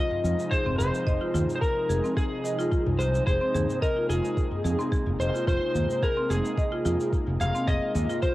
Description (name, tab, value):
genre	organic downtempo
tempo	109 BPM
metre	4/4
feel	straight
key	unclear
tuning	A4 = 440 Hz
part	electric slide guitar	melody	0.0-8.3 s	Ab4 to F5	-29 LUFS	left 1 dB	cassette tape, tape echo
part	airy breathy pad	sustained chords	0.0-8.3 s	C3 to F4	-33 LUFS	equal	chorus, sidechain pumping, cassette tape
part	marimba with medium hard mallets	arpeggios	0.0-8.3 s	C4 to Eb5	-30 LUFS	equal	cassette tape, tape echo
part	udu	percussion	0.1-8.1 s	none	-35 LUFS	left 2 dB	none
part	fretless electric bass	bass	0.2-8.0 s	F1 to F2	-27 LUFS	equal	lush chorus, sidechain pumping
part	shaker	drums	0.2-8.3 s	none	-45 LUFS	left 1 dB	cassette tape
part	electronic kick drum	drums	0.5-8.3 s	none	-27 LUFS	equal	cassette tape
room	light reverb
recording	home recording on cassette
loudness	-23 LUFS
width	side -16 dB against mid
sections	0.0-8.3 A section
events	none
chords	0.0 Fm7; 3.3 Abadd9/F